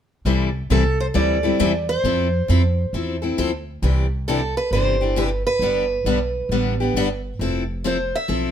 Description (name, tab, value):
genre	acoustic string swing (jazz manouche)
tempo	134 BPM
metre	4/4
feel	swing 64% on 8ths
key	C major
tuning	A4 = 441 Hz
part	picked steel-string acoustic guitar	accompaniment	0.3-8.5 s	C3 to A4	-22 LUFS	left 3 dB	none
part	upright bass	bass	0.3-8.5 s	F1 to F2	-22 LUFS	right 1 dB	none
part	picked acoustic archtop guitar	melody	0.7-8.5 s	A4 to E5	-23 LUFS	right 2 dB	none
room	light reverb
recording	minimal, uncompressed stereo recording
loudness	-18 LUFS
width	side -9 dB against mid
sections	0.3-8.5 A section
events	none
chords	0.3 C6; 2.0 Fmaj7; 3.8 Cadd9; 5.6 G; 7.4 Fmaj7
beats	| 0.26 0.70 1.15 1.60 | 2.04 2.49 2.94 3.38 | 3.83 4.27 4.72 5.17 | 5.61 6.06 6.50 6.95 | 7.40 7.84 8.29